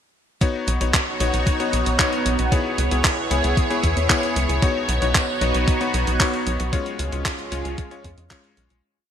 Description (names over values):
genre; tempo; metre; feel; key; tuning
italo disco; 114 BPM; 4/4; straight; B major; A4 = 441 Hz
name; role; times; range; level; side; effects
lush unison pad; sustained chords; 0.4-8.8 s; G#3 to C#5; -24 LUFS; right 1 dB; chorus, phaser
bright electric grand piano; stabs; 0.4-8.8 s; G#3 to C#5; -26 LUFS; left 5 dB; digital delay
clean 12-bit digital drum machine; drums; 0.4-8.8 s; handclaps, hi-hat; -24 LUFS; right 1 dB; overdrive
electronic kick drum; drums; 0.4-8.4 s; none; -21 LUFS; equal; overdrive
tight sequencer bass; bass; 0.7-8.8 s; B1 to E#2; -24 LUFS; equal; none
room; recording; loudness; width
light reverb; bright 1980s-style digital production, lossy compression artefacts; -18 LUFS; side -9 dB against mid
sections
0.4-8.8 verse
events
fade-out 6.0-8.8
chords
0.4 Badd9; 2.5 C#m7; 4.6 Badd9; 6.7 C#